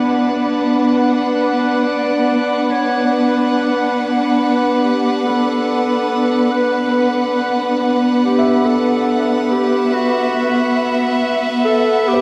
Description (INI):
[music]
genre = ambient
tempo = 71 BPM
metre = 4/4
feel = straight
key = B minor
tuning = A4 = 440 Hz
[part]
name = warm clarinet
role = melody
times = 0.0-12.2 s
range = D4 to D5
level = -24 LUFS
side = equal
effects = delay
[part]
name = dark chamber string section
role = sustained chords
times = 0.0-12.2 s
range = B3 to F#5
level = -17 LUFS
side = equal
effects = low-pass filter
[part]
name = felt-muted upright piano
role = arpeggios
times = 0.0-12.2 s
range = B4 to E5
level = -32 LUFS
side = equal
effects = delay
[sound]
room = wet cathedral reverb, RT60 5.5 s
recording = in a vast, echoing space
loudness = -16 LUFS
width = mono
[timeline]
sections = 0.0-12.2 A section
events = fade-in on clarinet 0.0-12.2; fade-out on felt piano 0.0-12.2; filter sweep on string section 0.0-12.2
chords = 0.0 Bm